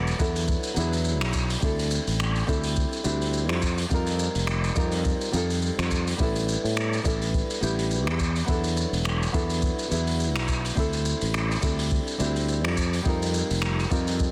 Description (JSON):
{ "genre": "sunset chillout", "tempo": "105 BPM", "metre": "4/4", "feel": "swing 57% on 16ths", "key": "unclear", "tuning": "A4 = 440 Hz", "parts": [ { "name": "nylon-string guitar", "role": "accompaniment", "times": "0.0-14.3 s", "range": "F#3 to Bb4", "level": "-32 LUFS", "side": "equal", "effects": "tape echo" }, { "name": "sustaining fretless electric bass", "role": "bass", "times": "0.0-14.3 s", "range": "E1 to A2", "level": "-29 LUFS", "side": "equal", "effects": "none" }, { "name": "vintage brush drum kit", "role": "drums", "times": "0.1-14.3 s", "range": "finger snaps, hi-hat, shaker", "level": "-33 LUFS", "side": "equal", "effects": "none" }, { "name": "electronic kick drum", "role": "drums", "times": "0.2-14.3 s", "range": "none", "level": "-30 LUFS", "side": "equal", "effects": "none" } ], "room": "small room ambience", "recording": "dense, heavily limited modern master", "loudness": "-26 LUFS", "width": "mono", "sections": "0.0-14.3 A section", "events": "none", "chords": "0.0 E9sus4; 1.6 D9sus4; 3.6 F9sus4; 6.2 A9sus4; 8.2 E9sus4; 10.8 D9sus4; 12.8 F9sus4", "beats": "0.48 1.05 | 1.62 2.19 2.76 3.34 | 3.91 4.48 5.05 5.62 | 6.19 6.76 7.34 7.91 | 8.48 9.05 9.62 10.19 | 10.76 11.34 11.91 12.48 | 13.05 13.62 14.19" }